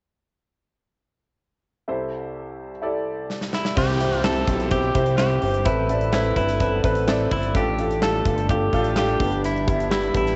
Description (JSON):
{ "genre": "piano-driven pop", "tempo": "127 BPM", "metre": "4/4", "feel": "straight", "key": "C major", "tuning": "A4 = 440 Hz", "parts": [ { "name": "warm concert grand piano", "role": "accompaniment", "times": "1.9-10.4 s", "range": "C2 to D5", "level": "-26 LUFS", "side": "equal", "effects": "cassette tape" }, { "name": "huge arena drum kit", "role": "drums", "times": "3.3-10.4 s", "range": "crash cymbal, handclaps, hi-hat, kick drum, snare drum", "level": "-29 LUFS", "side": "equal", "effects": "cassette tape" }, { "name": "direct-recorded clean electric guitar", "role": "melody", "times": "3.5-10.4 s", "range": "E4 to A4", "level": "-29 LUFS", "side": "equal", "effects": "spring reverb, cassette tape" }, { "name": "rich symphonic string section", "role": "sustained chords", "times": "3.8-10.4 s", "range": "C3 to G4", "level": "-41 LUFS", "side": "equal", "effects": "none" }, { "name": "fat analog bass", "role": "bass", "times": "3.8-10.4 s", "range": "G1 to C2", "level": "-28 LUFS", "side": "equal", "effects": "none" }, { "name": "downlifter", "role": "sound effects", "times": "3.8-7.5 s", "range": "none", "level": "-40 LUFS", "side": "equal", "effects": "none" } ], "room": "light reverb, small room reverb", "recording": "home recording on cassette, nothing above 8.0 kHz", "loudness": "-22 LUFS", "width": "mono", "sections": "1.9-3.8 A section; 3.8-10.4 B section", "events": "drum fill 3.3-3.8", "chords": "1.9 C6; 3.8 C; 5.7 Amadd9; 7.5 Dm; 9.2 G", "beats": "| 1.88 2.35 2.82 3.30 | 3.77 4.24 4.71 5.19 | 5.66 6.13 6.60 7.08 | 7.55 8.02 8.49 8.97 | 9.44 9.91" }